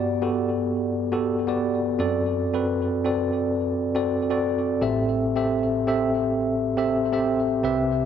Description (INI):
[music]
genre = pop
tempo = 85 BPM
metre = 4/4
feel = swing 55% on 16ths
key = unclear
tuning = A4 = 439 Hz
[part]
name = bell-like tine electric piano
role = solo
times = 0.0-8.1 s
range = A1 to E5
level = -21 LUFS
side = equal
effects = slow stereo tremolo, digital delay
[sound]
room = moderate concert hall reverb, RT60 2.0 s, digital ambience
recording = none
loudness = -21 LUFS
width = side -8 dB against mid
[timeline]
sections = 0.0-8.1 A section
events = none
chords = 0.0 Gmaj7; 2.0 D7/F#; 4.8 Am7